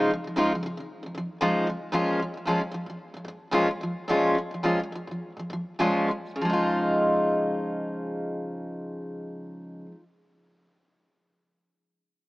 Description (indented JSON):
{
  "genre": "pop",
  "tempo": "97-115 BPM",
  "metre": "4/4",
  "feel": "swing 55% on 16ths",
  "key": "Db major",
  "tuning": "A4 = 440 Hz",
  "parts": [
    { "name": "picked steel-string acoustic guitar", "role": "accompaniment", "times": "0.0-10.0 s", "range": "Bb2 to F4", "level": "-25 LUFS", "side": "equal", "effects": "none" }
  ],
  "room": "moderate plate reverb, RT60 3.3 s",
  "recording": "small speaker sound",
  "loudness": "-24 LUFS",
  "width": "side -20 dB against mid",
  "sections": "0.0-6.4 A section; 6.4-11.3 B section",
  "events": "slowing down 1.9-6.4",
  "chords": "0.0 Dbadd9; 1.9 Bbm7; 6.4 Dbadd9",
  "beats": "0.36 0.88 1.41 | 1.93 2.46 2.98 3.52 | 4.07 4.62 5.20 5.78 | 6.39 7.00 7.62 8.24 | 8.86 9.47"
}